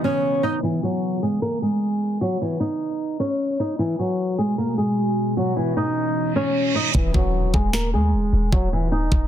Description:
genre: hip hop, trap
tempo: 152 BPM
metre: 4/4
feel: half-time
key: Eb phrygian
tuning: A4 = 440 Hz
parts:
  - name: flamenco guitar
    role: melody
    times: 0.0-9.3 s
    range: Fb3 to Eb5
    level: -22 LUFS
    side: equal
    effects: low-pass filter, ping-pong delay
  - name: deep dark ambient pad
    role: sustained chords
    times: 0.0-0.6, 4.3-6.9 s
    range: Cb3 to Gb4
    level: -29 LUFS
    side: equal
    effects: chorus, built-in reverb
  - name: reverse cymbal and impact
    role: sound effects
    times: 6.3-8.5 s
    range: none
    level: -29 LUFS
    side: right 4 dB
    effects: none
  - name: clean 808-style bass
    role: bass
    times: 6.9-9.3 s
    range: Eb1 to Eb2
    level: -22 LUFS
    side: equal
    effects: none
  - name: trap drum kit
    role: drums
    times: 6.9-9.2 s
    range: kick drum, snare drum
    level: -20 LUFS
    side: equal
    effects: overdrive
room: light reverb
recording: dense, heavily limited modern master, low-pass filter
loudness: -20 LUFS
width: side -11 dB against mid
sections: 0.6-6.9 A section; 6.9-9.3 B section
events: break 0.0-0.6; filter sweep 0.6-6.9; reverse cymbal 6.3-6.9; hi-hats muted 6.9-9.3; impact 6.9-8.5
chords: 0.0 Dbm7; 0.6 Ebm; 3.8 Abm7; 5.4 Dbm7; 6.9 Ebm

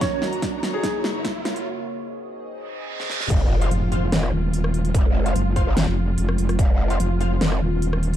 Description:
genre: heavy wobble dubstep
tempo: 146 BPM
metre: 4/4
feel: half-time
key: F phrygian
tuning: A4 = 440 Hz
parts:
  - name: warm baby grand piano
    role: melody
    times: 0.0-1.0 s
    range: Ab4 to Db5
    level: -29 LUFS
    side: equal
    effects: ping-pong delay
  - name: evolving wavetable pad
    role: sustained chords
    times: 0.0-8.2 s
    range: Gb2 to Eb5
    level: -30 LUFS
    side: right 1 dB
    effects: chorus, built-in reverb, sidechain pumping
  - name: big-room dance drum kit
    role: drums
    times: 0.0-8.2 s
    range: crash cymbal, hi-hat, rim click, snare drum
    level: -27 LUFS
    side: equal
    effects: none
  - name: electronic kick drum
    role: drums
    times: 0.0-6.7 s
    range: none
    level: -21 LUFS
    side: equal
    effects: overdrive
  - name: riser, reverse cymbal and impact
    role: sound effects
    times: 0.0-4.9 s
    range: none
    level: -30 LUFS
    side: right 1 dB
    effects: none
  - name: clear studio string section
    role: texture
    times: 0.0-8.2 s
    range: F4 to Bb5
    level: -35 LUFS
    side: left 1 dB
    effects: sidechain pumping
  - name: growl bass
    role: bass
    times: 3.3-7.6 s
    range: F1 to Gb1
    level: -22 LUFS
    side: equal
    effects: chorus, overdrive
  - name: orchestra-hit-like synth stab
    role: stabs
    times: 3.6-7.3 s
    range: F4 to F5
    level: -31 LUFS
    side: left 2 dB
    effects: built-in reverb, ping-pong delay
  - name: metallic wobble bass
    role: bass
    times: 3.7-8.2 s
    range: Eb1 to Gb1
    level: -21 LUFS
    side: equal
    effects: chorus, overdrive
room: little or no reverb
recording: dark, warm production, high-pass filter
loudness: -19 LUFS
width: side -11 dB against mid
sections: 0.0-3.3 A section; 3.3-8.2 B section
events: build-up 0.0-3.3; drum fill 0.0-1.7, 3.0-3.3; riser 0.0-1.7; filter sweep on ambient pad 0.0-3.3; filter sweep 0.0-3.3; break 1.7-3.3; reverse cymbal 2.7-3.3; drop 3.3-8.2; impact 3.3-4.9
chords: 0.0 Gb; 1.7 Ab; 3.3 Fm

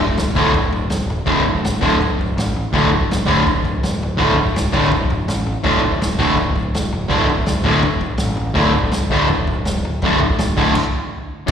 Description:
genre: garage rock duo or trio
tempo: 164 BPM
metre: 4/4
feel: straight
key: unclear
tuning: A4 = 440 Hz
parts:
  - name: growling picked electric bass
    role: bass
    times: 0.0-11.5 s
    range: D1 to A1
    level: -22 LUFS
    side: equal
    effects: overdrive
  - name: vintage drum kit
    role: drums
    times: 0.0-11.5 s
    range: crash cymbal, kick drum, snare drum, toms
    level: -22 LUFS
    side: equal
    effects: none
  - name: fuzz guitar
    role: riff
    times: 0.4-11.5 s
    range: D2 to D3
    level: -16 LUFS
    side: equal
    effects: distortion, slapback echo
room: light reverb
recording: live gig heard through the venue's PA, recital hall reverb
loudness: -15 LUFS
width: side -8 dB against mid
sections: 0.0-11.5 A section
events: stop 10.8-11.5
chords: 0.0 D5

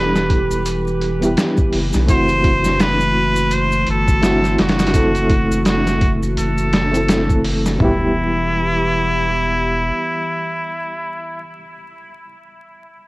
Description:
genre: trip hop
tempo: 84 BPM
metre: 4/4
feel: swing 58% on 16ths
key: E minor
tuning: A4 = 440 Hz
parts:
  - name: trumpet with straight mute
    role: melody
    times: 0.0-11.4 s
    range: E4 to C5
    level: -21 LUFS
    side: equal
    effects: cassette tape, dub echo
  - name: bright reed electric piano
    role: accompaniment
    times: 0.0-13.1 s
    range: G3 to A4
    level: -22 LUFS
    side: equal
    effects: fast tremolo, cassette tape
  - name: warbly tape-like pad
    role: sustained chords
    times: 0.0-11.4 s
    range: E3 to G4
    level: -24 LUFS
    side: equal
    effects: chorus, built-in reverb, cassette tape
  - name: round analog bass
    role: bass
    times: 0.0-9.9 s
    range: E1 to B1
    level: -21 LUFS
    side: equal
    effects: transformer saturation
  - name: trip hop sampler-style drum kit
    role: drums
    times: 0.2-8.0 s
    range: hi-hat, kick drum, snare drum, toms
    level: -18 LUFS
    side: equal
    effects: cassette tape
  - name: maracas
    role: percussion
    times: 0.2-7.8 s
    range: none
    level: -34 LUFS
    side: left 3 dB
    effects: none
room: digital ambience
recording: home recording on cassette, vinyl crackle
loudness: -14 LUFS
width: side -21 dB against mid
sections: 0.0-7.8 A section; 7.8-10.7 B section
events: none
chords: 0.0 Em; 2.1 F#m7b5; 7.8 Em

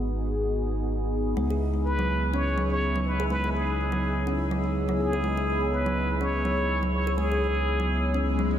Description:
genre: house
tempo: 124 BPM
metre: 4/4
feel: swing 56% on 16ths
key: unclear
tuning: A4 = 441 Hz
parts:
  - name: dark analog pad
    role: sustained chords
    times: 0.0-8.6 s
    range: G#4 to E6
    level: -33 LUFS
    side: left 3 dB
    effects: chorus, phaser
  - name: mellow synth brass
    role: stabs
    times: 0.0-8.6 s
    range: B3 to G#4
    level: -32 LUFS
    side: right 1 dB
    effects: chorus, ping-pong delay
  - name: smooth gliding synth bass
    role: bass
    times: 0.0-8.6 s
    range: G#1 to C#2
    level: -28 LUFS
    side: equal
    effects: none
  - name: kalimba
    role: arpeggios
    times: 1.4-8.5 s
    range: F#3 to G#4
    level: -30 LUFS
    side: equal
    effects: ping-pong delay
  - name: trumpet with plunger mute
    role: melody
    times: 1.9-8.6 s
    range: G#4 to C#5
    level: -30 LUFS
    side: equal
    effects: ping-pong delay
  - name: swell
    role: sound effects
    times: 8.3-8.6 s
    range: none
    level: -30 LUFS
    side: left 10 dB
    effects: none
room: moderate lush hall reverb, RT60 2.8 s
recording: dreamy mix soaked in reverb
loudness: -24 LUFS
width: side -10 dB against mid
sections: 0.0-8.6 A section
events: filter sweep on analog synth pad 0.0-8.6; swell 8.3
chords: 0.0 G#m7; 1.4 C#m7

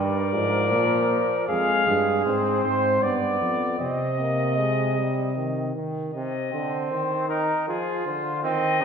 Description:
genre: classical, imitative canzona for brass ensemble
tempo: 78 BPM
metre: 3/4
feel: straight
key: C minor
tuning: A4 = 441 Hz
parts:
  - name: mellow trumpet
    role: melody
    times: 0.0-8.8 s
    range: Ab4 to F5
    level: -27 LUFS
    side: left 6 dB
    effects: none
  - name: warm flugelhorn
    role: second line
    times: 0.0-8.8 s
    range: C4 to Eb5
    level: -26 LUFS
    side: right 5 dB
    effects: none
  - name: clear trombone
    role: accompaniment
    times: 0.0-8.8 s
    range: C3 to C4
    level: -28 LUFS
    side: equal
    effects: none
  - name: mellow bass trombone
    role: bass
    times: 0.0-5.7 s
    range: F2 to C3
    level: -26 LUFS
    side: equal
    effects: none
room: wet recital hall reverb, RT60 1.5 s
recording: heard from further back in the room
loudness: -22 LUFS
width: side -6 dB against mid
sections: 0.0-6.1 A section; 6.1-8.8 B section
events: none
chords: 0.0 Eb/G (rootless); 0.7 Bb; 1.5 Fmadd9; 3.0 G; 3.8 Cm; 7.7 Fm

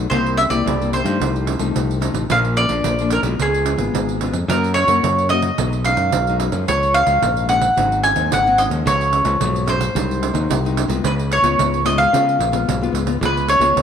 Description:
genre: samba and choro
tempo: 110 BPM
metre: 4/4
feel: straight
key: unclear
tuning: A4 = 440 Hz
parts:
  - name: nylon-string guitar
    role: accompaniment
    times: 0.0-13.8 s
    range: F#2 to F#4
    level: -24 LUFS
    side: left 8 dB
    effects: none
  - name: modern bright fingered electric bass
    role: bass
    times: 0.0-13.8 s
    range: Ab1 to C#3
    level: -22 LUFS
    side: equal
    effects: none
  - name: mandolin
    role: melody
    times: 0.1-13.8 s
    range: Ab4 to G#5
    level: -18 LUFS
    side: equal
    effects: none
  - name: pandeiro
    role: percussion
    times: 0.1-13.8 s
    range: none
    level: -24 LUFS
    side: right 10 dB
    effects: none
room: moderate echo chamber reverb, RT60 2.2 s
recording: 1960s-style stereo with parts hard left and right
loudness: -15 LUFS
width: side -8 dB against mid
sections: 0.0-4.5 A section; 4.5-13.8 B section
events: none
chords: 0.1 C7; 1.2 F7/C; 2.3 Bb; 3.4 Db7; 4.5 F#; 5.6 B6; 6.7 C#; 7.8 G#7; 8.9 C#; 10.0 G#7/B#; 11.0 C#7

